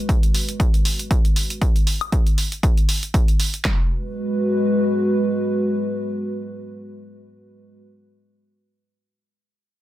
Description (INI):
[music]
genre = acid house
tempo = 118 BPM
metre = 4/4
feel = swing 55% on 16ths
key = G# minor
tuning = A4 = 440 Hz
[part]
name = dark analog pad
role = sustained chords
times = 0.0-7.8 s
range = G#3 to B4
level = -22 LUFS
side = equal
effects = chorus, sidechain pumping
[part]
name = electronic hi-hat and woodblock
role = drums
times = 0.1-3.6 s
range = none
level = -26 LUFS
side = right 1 dB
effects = overdrive
[part]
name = punchy analog drum machine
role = drums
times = 0.1-3.8 s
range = handclaps, kick drum, snare drum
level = -18 LUFS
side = equal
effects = overdrive
[sound]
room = little or no reverb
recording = dense, heavily limited modern master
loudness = -18 LUFS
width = side -14 dB against mid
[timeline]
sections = 0.0-3.6 A section; 3.6-7.7 B section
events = none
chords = 0.0 G#m7